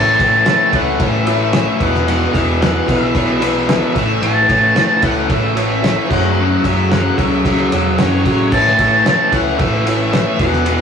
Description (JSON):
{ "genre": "classic rock", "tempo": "112 BPM", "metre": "4/4", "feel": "straight", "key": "A major", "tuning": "A4 = 440 Hz", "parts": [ { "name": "octave-fuzz lead guitar", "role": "melody", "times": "0.0-10.8 s", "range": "C#5 to A5", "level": "-17 LUFS", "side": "equal", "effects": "wah, distortion" }, { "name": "dark upright piano", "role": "accompaniment", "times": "0.0-10.8 s", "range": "E4 to G5", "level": "-25 LUFS", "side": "right 2 dB", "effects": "none" }, { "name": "mellow tonewheel organ", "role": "sustained chords", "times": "0.0-10.8 s", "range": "B3 to F#5", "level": "-29 LUFS", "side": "right 1 dB", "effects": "none" }, { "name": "biting overdriven guitar", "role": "riff", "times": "0.0-10.8 s", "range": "E2 to A3", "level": "-18 LUFS", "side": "left 5 dB", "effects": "none" }, { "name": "overdriven electric guitar", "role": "riff", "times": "0.0-10.8 s", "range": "E2 to A3", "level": "-21 LUFS", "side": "right 4 dB", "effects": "none" }, { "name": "hollow-body short-scale picked electric bass", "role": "bass", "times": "0.0-10.8 s", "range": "E1 to C#2", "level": "-21 LUFS", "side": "right 1 dB", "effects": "none" }, { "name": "cloth-damped thuddy drum kit", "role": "drums", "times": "0.2-10.8 s", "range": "crash cymbal, kick drum, ride cymbal, snare drum", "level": "-19 LUFS", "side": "equal", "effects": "none" } ], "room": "moderate studio reverb, RT60 0.5 s", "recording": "rough rehearsal-room recording, warm saturation, studio reverb", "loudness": "-12 LUFS", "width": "side -7 dB against mid", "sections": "0.0-10.8 A section", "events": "none", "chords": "0.0 A; 1.8 Esus4; 4.0 A; 6.1 F#m; 8.5 A" }